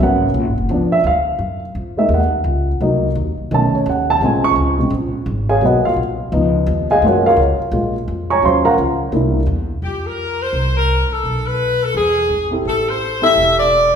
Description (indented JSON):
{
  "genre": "jazz, big band swing",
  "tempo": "171 BPM",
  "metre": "4/4",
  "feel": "swing 63% on 8ths",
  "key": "F major from 9.8 s",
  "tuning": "A4 = 440 Hz",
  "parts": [
    { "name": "dark baby grand piano", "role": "accompaniment", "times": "0.0-9.4, 12.5-13.7 s", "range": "Db3 to Db6", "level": "-16 LUFS", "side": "right 1 dB", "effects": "none" },
    { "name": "upright bass", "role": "bass", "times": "0.0-13.9 s", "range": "E1 to Gb2", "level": "-20 LUFS", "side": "equal", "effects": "none" },
    { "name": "edgy saxophone section", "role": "melody", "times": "9.8-13.9 s", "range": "G4 to E5", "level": "-15 LUFS", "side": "left 1 dB", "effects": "none" }
  ],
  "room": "wet recital hall reverb, RT60 1.5 s",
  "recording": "recorded in a church or concert hall",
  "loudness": "-14 LUFS",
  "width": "side -7 dB against mid",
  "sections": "0.0-9.8 A section; 9.8-14.0 B section",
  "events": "grand piano solo 0.0-9.8",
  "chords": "0.0 Abm11; 0.7 Db7b9; 1.4 Gb6; 2.8 Cm7b5; 3.5 Cb9; 4.2 Bbm7; 5.6 Cbmaj7#11; 6.3 Db9; 7.0 Gbmaj9; 8.4 Ebm9; 9.1 C7; 9.8 F5; 11.2 Asus2/B; 11.9 E; 12.7 Am7"
}